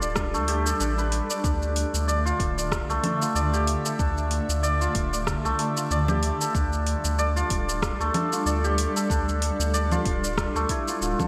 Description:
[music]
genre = organic downtempo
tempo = 94 BPM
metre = 4/4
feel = swing 56% on 16ths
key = unclear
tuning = A4 = 444 Hz
[part]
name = granular cloud pad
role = sustained chords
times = 0.0-11.3 s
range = D3 to E5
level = -34 LUFS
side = equal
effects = built-in reverb, sidechain pumping
[part]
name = santur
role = arpeggios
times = 0.0-11.3 s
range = A3 to D5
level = -29 LUFS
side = equal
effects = low-pass filter, delay
[part]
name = warm sub bass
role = bass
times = 0.0-11.1 s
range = D1 to D2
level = -30 LUFS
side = equal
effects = sidechain pumping
[part]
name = deep house drum kit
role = drums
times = 0.0-11.3 s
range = congas, hi-hat, rim click, shaker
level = -33 LUFS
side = equal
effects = gated reverb
[part]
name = electronic kick drum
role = drums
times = 0.2-11.3 s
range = none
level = -32 LUFS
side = equal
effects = none
[sound]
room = moderate lush hall reverb, RT60 2.0 s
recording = bright 1980s-style digital production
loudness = -25 LUFS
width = mono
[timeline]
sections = 0.0-11.3 A section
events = none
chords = 0.0 G/D; 1.4 Dm; 6.5 G5/D

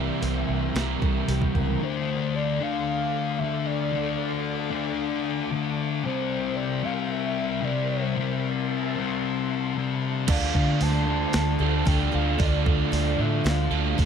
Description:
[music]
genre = rock, shoegaze and dream pop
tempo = 113 BPM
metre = 4/4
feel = straight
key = D minor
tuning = A4 = 440 Hz
[part]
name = pure breathy sine lead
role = melody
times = 0.0-14.1 s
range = C5 to A5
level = -33 LUFS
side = right 1 dB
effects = chorus, slapback echo
[part]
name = soft string machine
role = sustained chords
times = 0.0-14.1 s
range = A4 to D6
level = -36 LUFS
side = right 3 dB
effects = phaser, ensemble chorus
[part]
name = picked twelve-string acoustic guitar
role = arpeggios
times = 0.0-1.8, 10.3-14.1 s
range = F4 to D5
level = -39 LUFS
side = equal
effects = ensemble chorus, slapback echo
[part]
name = overdriven semi-hollow guitar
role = riff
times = 0.0-1.8, 10.3-14.1 s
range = C3 to Bb4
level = -30 LUFS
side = right 14 dB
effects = reverse reverb
[part]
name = thick fuzz guitar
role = riff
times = 0.0-14.1 s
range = C3 to D4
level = -27 LUFS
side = left 8 dB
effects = distortion, analog chorus
[part]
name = vintage muted fingered electric bass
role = bass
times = 0.0-1.7, 10.3-14.1 s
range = C2 to D3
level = -26 LUFS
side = right 1 dB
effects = none
[part]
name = clean 12-bit digital drum machine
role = drums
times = 0.2-1.6, 10.3-14.1 s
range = crash cymbal, hi-hat, kick drum, snare drum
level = -26 LUFS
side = right 1 dB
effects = none
[sound]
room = light reverb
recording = none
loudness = -23 LUFS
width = side -7 dB against mid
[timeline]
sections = 0.0-1.8 A section; 1.8-14.1 B section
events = none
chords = 0.0 C7; 1.8 Dm7; 6.0 C7; 10.3 Dm7

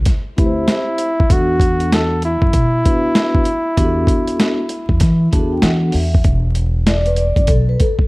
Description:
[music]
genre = hip hop, jazz-hop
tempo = 97 BPM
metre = 4/4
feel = swing 64% on 16ths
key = E minor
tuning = A4 = 440 Hz
[part]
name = mellow flugelhorn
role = melody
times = 0.0-5.6 s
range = E4 to A4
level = -19 LUFS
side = equal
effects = none
[part]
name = upright bass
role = bass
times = 0.0-7.7 s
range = E1 to E3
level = -18 LUFS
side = equal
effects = none
[part]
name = dusty soul sampler-style drum kit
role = drums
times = 0.1-8.1 s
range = hi-hat, kick drum, snare drum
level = -16 LUFS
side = equal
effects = overdrive
[part]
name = vibraphone with soft mallets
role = accompaniment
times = 0.4-7.9 s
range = B3 to A5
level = -21 LUFS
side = left 1 dB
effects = none
[sound]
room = studio reverb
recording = dark, warm production, vinyl crackle, faint mains hum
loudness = -13 LUFS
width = side -23 dB against mid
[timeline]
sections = 0.0-6.2 A section; 6.2-8.1 B section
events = vibraphone fill 5.0-6.2; vibraphone solo 6.2-8.1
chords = 0.0 D9sus4; 1.3 E9sus4; 6.2 E5

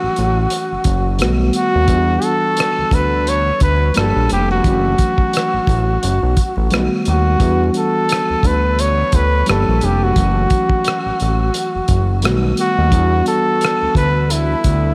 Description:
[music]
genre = R&B, neo-soul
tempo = 87 BPM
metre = 4/4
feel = swing 55% on 16ths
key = E dorian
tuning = A4 = 440 Hz
[part]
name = mellow trumpet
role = melody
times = 0.0-14.9 s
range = E4 to C#5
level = -21 LUFS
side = equal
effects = delay
[part]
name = bright reed electric piano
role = accompaniment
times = 0.0-14.9 s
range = D3 to G4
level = -24 LUFS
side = equal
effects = none
[part]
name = fat analog bass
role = bass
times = 0.0-14.9 s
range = F1 to E2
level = -19 LUFS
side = equal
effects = none
[part]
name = cloth-damped thuddy drum kit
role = drums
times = 0.2-14.8 s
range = hi-hat, kick drum, rim click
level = -22 LUFS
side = equal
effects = none
[sound]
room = moderate huge ambient reverb, RT60 5.0 s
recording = dreamy mix soaked in reverb, vinyl crackle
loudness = -16 LUFS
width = mono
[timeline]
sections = 0.0-14.9 A section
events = none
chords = 0.0 F#m7; 1.2 B7b13; 1.9 Em9; 4.0 Gm7; 4.6 F#m7; 6.7 B7b13; 7.4 Em9; 9.5 Gm7; 10.2 F#m7; 12.2 B7b13; 12.9 Em9

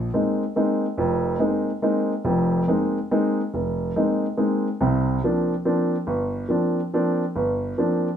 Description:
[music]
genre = jazz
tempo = 141 BPM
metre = 3/4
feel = swing 66% on 8ths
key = Bb mixolydian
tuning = A4 = 439 Hz
[part]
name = warm grand piano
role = solo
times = 0.0-8.1 s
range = F1 to Eb4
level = -20 LUFS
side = equal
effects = none
[sound]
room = moderate club reverb, RT60 0.8 s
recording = minimal, uncompressed stereo recording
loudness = -20 LUFS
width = side -8 dB against mid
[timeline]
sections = 0.0-8.2 A section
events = none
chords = 0.0 Bb9sus4; 4.8 C9sus4

